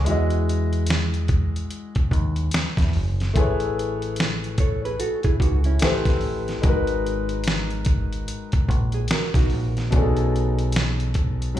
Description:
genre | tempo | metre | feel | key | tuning
R&B, neo-soul | 73 BPM | 4/4 | swing 61% on 16ths | G# minor | A4 = 439 Hz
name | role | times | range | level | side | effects
warm baby grand piano | accompaniment | 0.0-11.6 s | B2 to D#5 | -27 LUFS | left 3 dB | slapback echo
deep dub picked electric bass | bass | 0.0-11.5 s | F#1 to E2 | -23 LUFS | equal | none
dusty soul sampler-style drum kit | drums | 0.1-11.6 s | hi-hat, kick drum, snare drum | -23 LUFS | equal | none
hollow-body jazz guitar | second line | 4.6-9.9 s | C#4 to C#5 | -30 LUFS | right 4 dB | tape echo, slapback echo
room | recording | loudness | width
little or no reverb | live gig heard through the venue's PA, club reverb | -20 LUFS | side -12 dB against mid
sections
0.0-11.6 A section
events
break 0.1-0.9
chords
0.1 Emaj7; 3.4 Amaj7; 5.8 Am9; 6.6 G#m9; 9.9 B13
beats
| 0.06 0.88 1.71 2.53 | 3.35 4.17 4.99 5.82 | 6.64 7.46 8.28 9.10 | 9.93 10.75 11.57

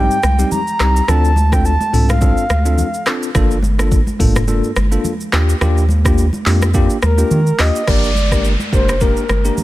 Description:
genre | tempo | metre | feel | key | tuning
afrobeats | 106 BPM | 4/4 | swing 55% on 16ths | G minor | A4 = 440 Hz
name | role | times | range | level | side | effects
breathy flute-like synth lead | melody | 0.0-3.0, 7.0-9.6 s | Bb4 to Bb5 | -20 LUFS | equal | chorus
bell-like tine electric piano | accompaniment | 0.0-9.6 s | G3 to Bb4 | -21 LUFS | left 2 dB | medium stereo tremolo
round analog bass | bass | 0.0-9.5 s | F1 to Eb3 | -15 LUFS | equal | none
afro-pop drum kit | drums | 0.1-9.6 s | crash cymbal, handclaps, hi-hat, kick drum, rim click, shaker, toms | -18 LUFS | equal | none
congas | percussion | 0.2-9.6 s | none | -25 LUFS | right 2 dB | none
downlifter | sound effects | 7.9-9.6 s | none | -24 LUFS | equal | none
room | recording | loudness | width
little or no reverb | none | -12 LUFS | side -16 dB against mid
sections
0.0-7.9 A section; 7.9-9.6 B section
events
none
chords
0.0 Cm; 1.1 Dm7; 3.3 Gm7; 5.3 Ebmaj7; 7.9 Gm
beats
0.52 | 1.08 1.65 2.22 2.78 | 3.35 3.92 4.48 5.05 | 5.61 6.18 6.75 7.31 | 7.88 8.44 9.01 9.57

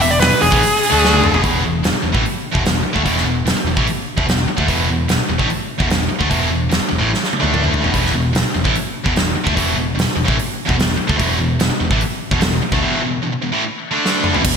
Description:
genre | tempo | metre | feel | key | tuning
hard rock | 148 BPM | 4/4 | straight | E mixolydian | A4 = 440 Hz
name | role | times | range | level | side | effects
smooth overdriven lead guitar | melody | 0.0-1.4 s | G#4 to E5 | -16 LUFS | equal | none
high-gain distorted guitar | riff | 0.0-14.6 s | E2 to D4 | -18 LUFS | equal | distortion
overdriven picked electric bass | bass | 0.0-14.6 s | E1 to D2 | -21 LUFS | equal | none
huge arena drum kit | drums | 0.0-14.5 s | crash cymbal, hi-hat, kick drum, snare drum, toms | -19 LUFS | equal | gated reverb
room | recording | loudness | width
moderate lush hall reverb, RT60 1.7 s, small room ambience | bright 1980s-style digital production | -14 LUFS | side -6 dB against mid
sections
0.0-1.4 A section; 1.4-14.4 B section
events
lead electric guitar solo 0.0-1.4; drum fill 1.0-1.4, 7.1-7.9, 14.0-14.4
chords
0.0 E; 0.9 D5; 1.3 E5; 7.4 D5; 7.8 E5; 13.9 D5; 14.3 E5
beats
0.21 0.61 1.02 | 1.43 1.83 2.24 2.65 | 3.06 3.46 3.87 4.28 | 4.68 5.09 5.50 5.91 | 6.31 6.72 7.13 7.53 | 7.94 8.35 8.75 9.16 | 9.57 9.97 10.38 10.79 | 11.20 11.60 12.01 12.41 | 12.82 13.23 13.63 14.04 | 14.44

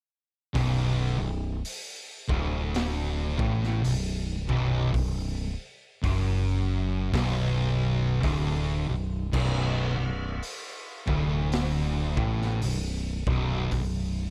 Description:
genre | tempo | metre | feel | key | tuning
stoner and doom metal | 55 BPM | 4/4 | swing 59% on 8ths | B minor | A4 = 443 Hz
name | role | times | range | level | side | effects
fuzz guitar | riff | 0.5-14.2 s | B1 to A2 | -36 LUFS | equal | distortion
thick fuzz guitar | riff | 0.5-14.3 s | B1 to A2 | -34 LUFS | equal | none
thick fuzz guitar | riff | 0.5-14.2 s | B1 to A2 | -33 LUFS | equal | distortion
growling fingered electric bass | bass | 0.6-14.3 s | B0 to A1 | -33 LUFS | equal | overdrive, tube saturation
raw garage drum kit | drums | 0.6-14.0 s | crash cymbal, hi-hat, kick drum, snare drum | -35 LUFS | equal | none
room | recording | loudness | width
little or no reverb | dark, warm production | -28 LUFS | mono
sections
0.6-14.3 A section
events
none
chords
0.6 Bm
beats
| 0.55 1.65 2.74 3.84 | 4.94 6.03 7.13 8.23 | 9.33 10.43 11.53 12.63 | 13.73

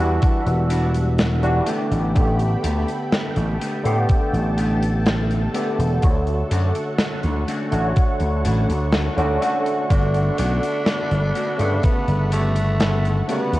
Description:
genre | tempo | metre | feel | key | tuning
vaporwave | 62 BPM | 4/4 | straight | D major | A4 = 438 Hz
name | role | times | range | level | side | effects
barky tine electric piano | accompaniment | 0.0-13.6 s | C#3 to F#5 | -24 LUFS | equal | ensemble chorus, tape echo
lush unison pad | sustained chords | 0.0-13.6 s | G3 to C#6 | -33 LUFS | equal | chorus, phaser
vintage slap bass | bass | 0.0-13.6 s | E1 to A2 | -20 LUFS | equal | tube saturation
big rock drum kit | drums | 0.2-13.6 s | hi-hat, snare drum | -26 LUFS | equal | none
electronic kick drum | drums | 0.2-12.0 s | none | -18 LUFS | equal | none
clean electric guitar | riff | 0.7-13.5 s | G3 to F#5 | -30 LUFS | left 1 dB | lush chorus, vintage 12-bit sampler grit, tape echo
raspy tenor saxophone | melody | 9.9-13.6 s | A3 to D4 | -26 LUFS | equal | vintage 12-bit sampler grit, tape echo
room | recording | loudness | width
light reverb | cassette tape | -18 LUFS | side -17 dB against mid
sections
0.0-13.6 A section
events
clean electric guitar fill 8.4-9.9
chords
0.0 Em9; 1.7 A9sus4; 6.0 Dmaj7; 9.9 Gmaj9#11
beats
0.23 1.19 | 2.16 3.13 4.10 5.06 | 6.03 7.00 7.97 8.93 | 9.90 10.87 11.84 12.80

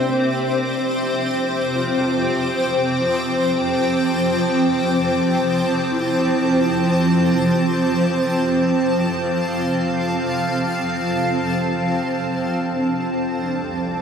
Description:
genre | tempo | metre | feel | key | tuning
ambient | free time | none | none | unclear | A4 = 440 Hz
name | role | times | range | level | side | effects
granular cloud pad | sustained chords | 0.0-14.0 s | F3 to A5 | -18 LUFS | equal | built-in reverb
mellow electric guitar | arpeggios | 0.0-14.0 s | C4 to A4 | -31 LUFS | left 1 dB | none
warm chamber violin section | texture | 0.0-14.0 s | G5 to D6 | -35 LUFS | left 1 dB | none
warm studio cello section | bass | 13.4-14.0 s | C2 | -40 LUFS | left 1 dB | none
room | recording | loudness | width
wet huge ambient reverb, RT60 8.8 s | none | -17 LUFS | side -7 dB against mid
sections
0.0-13.4 A section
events
fade-out on violin section 0.0-13.4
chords
0.1 F; 13.4 Csus2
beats
free time

